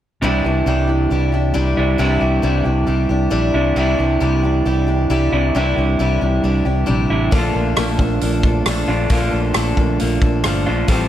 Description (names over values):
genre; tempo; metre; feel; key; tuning
folk rock and heartland rock; 135 BPM; 4/4; straight; C mixolydian; A4 = 436 Hz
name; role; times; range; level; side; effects
picked steel-string acoustic guitar; accompaniment; 0.2-11.1 s; A2 to A4; -21 LUFS; left 4 dB; none
electric guitar through a small old amp; riff; 0.2-11.1 s; A2 to F4; -20 LUFS; right 3 dB; none
fingered electric bass; bass; 0.2-11.1 s; G1 to C2; -19 LUFS; equal; none
vintage drum kit; drums; 7.3-11.0 s; hi-hat, kick drum, rim click; -20 LUFS; equal; none
room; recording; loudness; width
light reverb, small room reverb; none; -15 LUFS; side -11 dB against mid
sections
0.2-11.1 A section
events
none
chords
0.2 Cadd9; 7.3 Bbmaj7